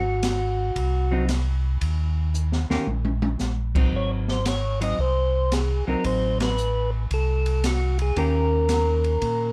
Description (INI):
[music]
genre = soul jazz organ trio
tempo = 113 BPM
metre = 4/4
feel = swing 67% on 8ths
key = unclear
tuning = A4 = 437 Hz
[part]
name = percussive tonewheel organ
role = melody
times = 0.0-9.5 s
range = Gb4 to Eb5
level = -28 LUFS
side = equal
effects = slow rotary speaker
[part]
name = vintage hollow-body jazz guitar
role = accompaniment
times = 0.0-9.5 s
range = Eb3 to G4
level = -31 LUFS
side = equal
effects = none
[part]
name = mellow tonewheel organ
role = bass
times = 0.0-9.5 s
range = Ab1 to Bb2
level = -26 LUFS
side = equal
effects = chorus vibrato, slow rotary speaker
[part]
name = open jazz drum kit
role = drums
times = 0.2-9.4 s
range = crash cymbal, hi-hat, kick drum, ride cymbal, snare drum, toms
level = -32 LUFS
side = equal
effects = none
[sound]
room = light reverb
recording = dark, warm production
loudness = -24 LUFS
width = mono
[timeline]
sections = 0.0-9.5 A section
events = drum fill 2.3-3.4; band accent 6.3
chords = 0.0 Ab7; 1.8 Eb5; 3.9 Ab7; 6.0 Adim7; 8.2 Eb7